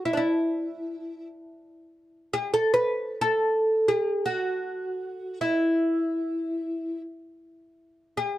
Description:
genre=Arabic maqam ensemble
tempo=free time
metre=none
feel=none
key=unclear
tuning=A4 = 440 Hz
part: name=oud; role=solo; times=0.0-8.4 s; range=D4 to B4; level=-24 LUFS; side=equal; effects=none
room=light reverb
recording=dark, warm production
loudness=-24 LUFS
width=side -14 dB against mid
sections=0.0-8.4 A section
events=none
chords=none

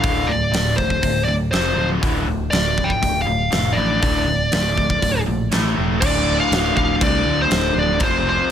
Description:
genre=hard rock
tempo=120 BPM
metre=4/4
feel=straight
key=D minor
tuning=A4 = 441 Hz
part: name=high-gain lead guitar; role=melody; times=0.0-8.5 s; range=C5 to G5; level=-21 LUFS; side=left 1 dB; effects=distortion
part: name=biting overdriven guitar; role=riff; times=0.0-8.5 s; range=D2 to A3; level=-22 LUFS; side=equal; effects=none
part: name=picked electric bass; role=bass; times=0.0-8.4 s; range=D1 to D2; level=-24 LUFS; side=equal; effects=none
part: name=huge arena drum kit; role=drums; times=0.0-8.1 s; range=crash cymbal, hi-hat, kick drum, snare drum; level=-22 LUFS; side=right 1 dB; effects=none
room=light reverb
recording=none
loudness=-16 LUFS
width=side -9 dB against mid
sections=0.0-6.0 A section; 6.0-8.5 B section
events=none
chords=0.0 D5; 1.5 F5; 2.0 D5; 5.5 A5; 6.0 D5; 8.0 F5

